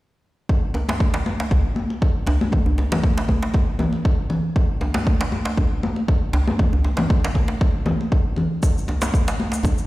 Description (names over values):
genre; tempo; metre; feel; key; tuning
afro house; 118 BPM; 4/4; swing 54% on 16ths; none; none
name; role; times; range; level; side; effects
electronic kick drum; drums; 0.5-9.8 s; none; -19 LUFS; equal; overdrive
congas; percussion; 0.7-9.8 s; none; -24 LUFS; left 1 dB; none
djembe; percussion; 0.7-9.7 s; none; -24 LUFS; equal; none
tube shaker; percussion; 8.6-9.9 s; none; -35 LUFS; left 2 dB; none
room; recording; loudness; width
light reverb, studio reverb; played on a big sound system in a bare room, large studio reverb; -18 LUFS; side -18 dB against mid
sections
0.5-9.9 A section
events
none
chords
none